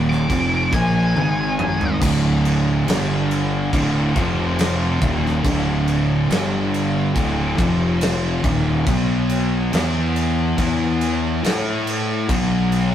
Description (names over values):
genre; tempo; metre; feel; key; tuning
stoner and doom metal; 70 BPM; 4/4; straight; D dorian; A4 = 436 Hz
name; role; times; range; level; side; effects
octave-fuzz lead guitar; melody; 0.0-2.0 s; G#5 to D6; -23 LUFS; left 1 dB; distortion
sludgy distorted guitar; riff; 0.0-12.9 s; D2 to A4; -27 LUFS; equal; none
thick fuzz guitar; riff; 0.0-12.9 s; D2 to A4; -22 LUFS; left 4 dB; distortion
thick fuzz guitar; riff; 0.0-12.9 s; D2 to A4; -23 LUFS; right 4 dB; distortion
fuzz fingered electric bass; bass; 0.0-12.9 s; D1 to A2; -25 LUFS; equal; overdrive, tube saturation
big rock drum kit; drums; 0.1-12.9 s; crash cymbal, kick drum, snare drum, toms; -24 LUFS; equal; none
room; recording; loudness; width
moderate studio reverb, RT60 0.6 s; rough rehearsal-room recording, tube saturation; -17 LUFS; side -10 dB against mid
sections
0.0-2.0 A section; 2.0-12.9 B section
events
lead electric guitar solo 0.0-2.0; drum fill 1.1-2.0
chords
0.3 Dm; 1.1 G#5; 2.0 D5; 2.9 G5; 3.7 D5; 4.2 F5; 5.0 D5; 6.3 G5; 7.2 D5; 7.6 F5; 8.4 Eb5; 8.9 B5; 9.7 E5; 11.4 A5; 12.3 B5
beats
0.29 1.15 | 2.01 2.87 3.72 4.58 | 5.44 6.29 7.15 8.01 | 8.86 9.72 10.58 11.43 | 12.29